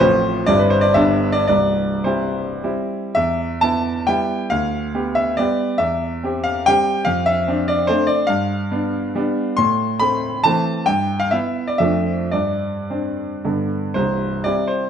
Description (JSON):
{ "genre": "classical, romantic triple-time dance for piano with dotted rhythms", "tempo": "102-154 BPM", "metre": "3/4", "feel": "rubato", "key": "C major", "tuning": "A4 = 444 Hz", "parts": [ { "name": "bright grand piano", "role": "solo", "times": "0.0-14.9 s", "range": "C1 to C6", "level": "-17 LUFS", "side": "equal", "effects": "none" } ], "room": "wet large studio reverb, RT60 1.3 s", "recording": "none", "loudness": "-17 LUFS", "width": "side -8 dB against mid", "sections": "0.0-3.2 A section; 3.2-14.0 B section", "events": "none", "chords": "0.0 F/A; 0.5 C/G; 1.0 G; 1.5 C; 3.2 Em; 4.5 G7/D; 5.8 C/E; 7.1 Dm7/F; 8.3 G7; 9.6 Am; 10.9 Em/G; 11.8 Dm/F; 12.3 Gsus4; 13.4 G; 14.0 C" }